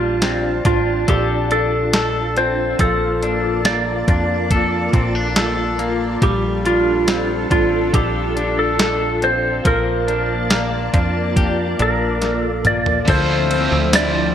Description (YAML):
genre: dream pop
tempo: 70 BPM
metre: 4/4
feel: straight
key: Bb lydian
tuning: A4 = 440 Hz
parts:
  - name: clean lap steel guitar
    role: melody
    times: 0.0-14.3 s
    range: F4 to D5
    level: -20 LUFS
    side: right 1 dB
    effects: wide subtle chorus, digital delay
  - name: soft string machine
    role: sustained chords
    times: 0.0-14.3 s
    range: D3 to A5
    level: -24 LUFS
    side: equal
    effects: phaser, ensemble chorus
  - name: electric guitar at the edge of break-up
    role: arpeggios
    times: 0.0-14.3 s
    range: F3 to A4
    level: -23 LUFS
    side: left 4 dB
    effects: wide subtle chorus, digital delay
  - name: plucky analog bass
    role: bass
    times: 0.0-14.3 s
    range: A1 to F2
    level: -23 LUFS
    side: equal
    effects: none
  - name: detuned 8-bit digital drum machine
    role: drums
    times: 0.2-14.1 s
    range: hi-hat, kick drum, ride cymbal, snare drum, tambourine, toms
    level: -19 LUFS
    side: equal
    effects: gated reverb
  - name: biting overdriven guitar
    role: accompaniment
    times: 13.1-14.3 s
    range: D3 to C5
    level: -22 LUFS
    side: right 2 dB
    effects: harmonic tremolo, lush chorus
room: moderate plate reverb, RT60 2.7 s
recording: bright 1980s-style digital production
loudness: -15 LUFS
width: side -9 dB against mid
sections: 0.0-13.1 A section; 13.1-14.3 B section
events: drum fill 12.2-13.1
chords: 0.0 F69; 2.8 Bbmaj7; 6.2 F69; 9.7 Bbmaj7; 13.1 Dm9